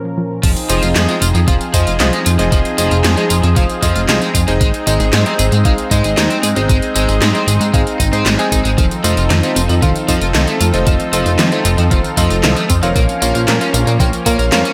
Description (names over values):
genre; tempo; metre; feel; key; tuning
synthwave; 115 BPM; 4/4; straight; F minor; A4 = 440 Hz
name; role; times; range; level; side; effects
brassy analog pad; sustained chords; 0.0-14.7 s; Bb2 to Bb4; -23 LUFS; equal; chorus, phaser, sidechain pumping
unison pluck; arpeggios; 0.0-0.4, 8.8-14.7 s; Eb3 to Bb4; -26 LUFS; equal; none
bright electric grand piano; stabs; 0.0-14.6 s; Eb4 to Ab5; -22 LUFS; equal; delay
overdriven semi-hollow guitar; riff; 0.4-14.7 s; F3 to Bb4; -24 LUFS; equal; analog chorus, delay
chorused synth bass; bass; 0.4-14.6 s; F1 to Bb2; -18 LUFS; equal; none
80s electronic pad drums; drums; 0.4-14.7 s; crash cymbal, handclaps, hi-hat, snare drum, tambourine; -21 LUFS; equal; overdrive, gated reverb
electronic kick drum; drums; 0.4-14.4 s; none; -18 LUFS; equal; none
room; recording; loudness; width
light reverb, digital ambience; none; -14 LUFS; mono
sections
0.4-14.7 A section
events
none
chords
0.4 Fm7; 4.6 Ab; 8.8 F7; 13.0 Bbm